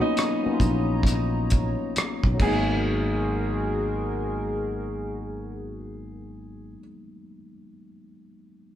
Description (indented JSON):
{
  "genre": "R&B, neo-soul",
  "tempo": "67 BPM",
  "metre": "4/4",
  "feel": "swing 63% on 16ths",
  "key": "G# dorian",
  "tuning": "A4 = 439 Hz",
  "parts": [
    { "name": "bright baby grand piano", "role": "melody", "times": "0.0-6.8 s", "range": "D#4 to G#4", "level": "-32 LUFS", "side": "right 2 dB", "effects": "none" },
    { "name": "tine electric piano", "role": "accompaniment", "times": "0.0-8.8 s", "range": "F#3 to E#4", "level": "-30 LUFS", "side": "left 3 dB", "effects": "none" },
    { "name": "hollow soft pad", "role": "sustained chords", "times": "0.0-6.8 s", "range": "G#3 to D#6", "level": "-32 LUFS", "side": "equal", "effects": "chorus" },
    { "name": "cloth-damped thuddy drum kit", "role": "drums", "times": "0.2-2.7 s", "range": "crash cymbal, hi-hat, kick drum, rim click", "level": "-26 LUFS", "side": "equal", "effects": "none" },
    { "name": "fingered electric bass", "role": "bass", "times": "0.5-6.8 s", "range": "G#1 to B1", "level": "-30 LUFS", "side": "equal", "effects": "none" }
  ],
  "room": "moderate large studio reverb, RT60 1.4 s",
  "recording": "band playing live in one room",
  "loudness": "-23 LUFS",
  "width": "side -11 dB against mid",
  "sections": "0.0-2.8 A section; 2.8-6.4 B section",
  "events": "none",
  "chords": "0.0 Bmaj9; 2.4 G#m9"
}